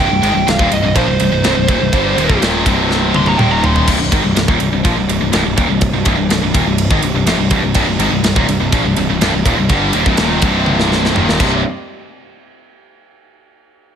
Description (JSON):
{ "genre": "heavy metal", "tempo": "124 BPM", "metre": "4/4", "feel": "straight", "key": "C minor", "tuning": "A4 = 436 Hz", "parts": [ { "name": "high-gain lead guitar", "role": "melody", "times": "0.0-3.9 s", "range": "C5 to C6", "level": "-18 LUFS", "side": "right 2 dB", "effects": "distortion, digital delay" }, { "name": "heavy high-gain guitar", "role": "riff", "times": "0.0-11.6 s", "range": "C2 to G3", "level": "-19 LUFS", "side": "right 12 dB", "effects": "distortion" }, { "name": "heavy high-gain guitar", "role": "riff", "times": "0.0-3.9, 7.8-11.6 s", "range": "C2 to G3", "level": "-21 LUFS", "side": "equal", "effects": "distortion" }, { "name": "high-gain distorted guitar", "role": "riff", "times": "0.0-11.6 s", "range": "C2 to G3", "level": "-19 LUFS", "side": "left 10 dB", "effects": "distortion" }, { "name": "fuzz picked electric bass", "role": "bass", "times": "0.0-11.6 s", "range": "C1 to Bb1", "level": "-18 LUFS", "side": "equal", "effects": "overdrive" }, { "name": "tight metal drum kit", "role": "drums", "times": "0.2-11.5 s", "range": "crash cymbal, kick drum, ride cymbal, snare drum, toms", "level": "-17 LUFS", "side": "equal", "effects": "none" }, { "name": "warm symphonic string section", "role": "sustained chords", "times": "3.9-11.6 s", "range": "C3 to Eb5", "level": "-28 LUFS", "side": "equal", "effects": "none" } ], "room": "light reverb, small room ambience", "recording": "none", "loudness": "-11 LUFS", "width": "side -8 dB against mid", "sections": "0.0-3.9 A section; 3.9-11.6 B section; 11.6-13.6 C section", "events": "lead electric guitar solo 0.0-3.9; drum fill 2.9-3.9, 10.7-11.6", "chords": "0.0 Cm; 3.4 Eb5; 3.9 Cm; 11.2 Eb5; 11.4 Cm; 11.6 N.C." }